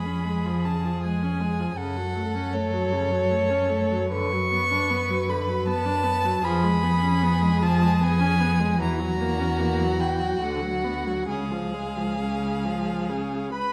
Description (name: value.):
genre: classical, slow romantic movement for string quartet.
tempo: 66-82 BPM.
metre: 3/4.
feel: rubato.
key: F# minor.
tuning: A4 = 440 Hz.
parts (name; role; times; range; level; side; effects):
warm violin; melody; 0.0-13.7 s; C#5 to C#6; -30 LUFS; equal; none.
warm violin; second line; 0.0-13.7 s; F#4 to B5; -34 LUFS; equal; none.
rich viola; accompaniment; 0.0-13.7 s; C#3 to B4; -32 LUFS; equal; none.
warm cello; bass; 0.0-13.7 s; C#2 to F#2; -28 LUFS; equal; none.
room: moderate recital hall reverb, RT60 1.8 s.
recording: dark, warm production.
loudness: -24 LUFS.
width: mono.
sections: 0.0-13.7 A section.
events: none.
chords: 0.0 C#/E#; 1.8 F#m; 4.1 Bm/F#; 6.4 C#7/E#; 8.8 F#7/E; 10.4 Bm/D; 11.3 C#.